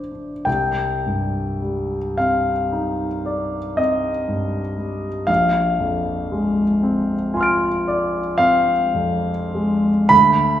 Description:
classical, impressionist solo piano; 28-41 BPM (dotted quarters); 9/8; rubato; C minor; A4 = 440 Hz
warm grand piano; solo; 0.0-10.6 s; A1 to D7; -17 LUFS; equal
wet recital hall reverb, RT60 1.5 s; heard from further back in the room; -17 LUFS; side -11 dB against mid
0.5-10.6 A section
0.5 Cmadd9; 5.3 Bb9

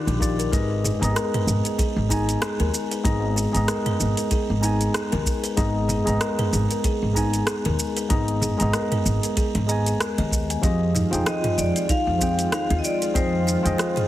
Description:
sunset chillout; 95 BPM; 4/4; swing 57% on 16ths; A4 = 442 Hz
mellow tine electric piano; accompaniment; 0.0-14.1 s; Eb3 to Bb5; -26 LUFS; moving between left 4 dB and right 5 dB; auto-pan, digital delay
buzzing kalimba; arpeggios; 0.0-14.0 s; C4 to Ab5; -29 LUFS; left 3 dB; digital delay
upright bass; bass; 0.1-13.7 s; Ab1 to F2; -24 LUFS; equal
deep house drum kit; drums; 0.1-14.1 s; hi-hat, rim click, shaker, toms; -27 LUFS; right 1 dB
electronic kick drum; drums; 0.2-13.3 s; -24 LUFS; equal; overdrive
lush unison pad; sustained chords; 10.6-14.1 s; Eb3 to F4; -33 LUFS; right 1 dB; chorus
vibraphone with medium hard mallets; melody; 11.3-14.1 s; C5 to F5; -26 LUFS; left 2 dB; digital delay
light reverb, digital ambience; heavily compressed radio sound; -20 LUFS; side -14 dB against mid
0.0-14.1 A section
0.0 Ebmaj7; 0.5 Abmadd9; 10.6 Fm7

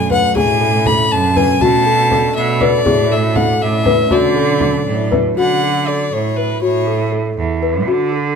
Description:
contemporary instrumental, chamber music in an uneven meter; 240 BPM (eighths); 5/8; straight; D lydian; A4 = 435 Hz
clear violin; melody; 0.0-7.1 s; B4 to B5; -17 LUFS; left 4 dB
deep dark ambient pad; sustained chords; 0.0-5.4 s; B2 to D4; -22 LUFS; right 1 dB; chorus, built-in reverb
clear cello; bass; 0.0-8.4 s; E2 to D3; -18 LUFS; right 5 dB
celesta; arpeggios; 0.1-8.3 s; F#4 to B4; -18 LUFS; left 3 dB
frame drum; percussion; 0.1-5.4 s; -22 LUFS; left 1 dB
moderate studio reverb, RT60 0.8 s; minimal, uncompressed stereo recording; -12 LUFS; side -6 dB against mid
0.0-5.4 A section; 5.4-8.4 B section
0.4 Amaj9; 1.6 Bm7; 2.9 Amaj9; 4.1 D; 6.6 A6

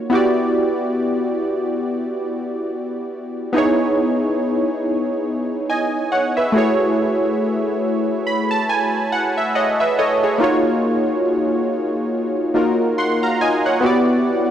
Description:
R&B; 70 BPM; 4/4; swing 58% on 16ths; A4 = 440 Hz
warm analog keys; solo; 0.0-14.5 s; A3 to B#5; -17 LUFS; equal; chorus
light reverb; dry, gritty hardware recording; -17 LUFS; side -10 dB against mid
0.0-14.5 A section
synth keys fill 7.8-10.4
0.1 Em9; 3.5 C#m9; 6.5 F#m9; 10.4 D#m9; 13.8 Em9

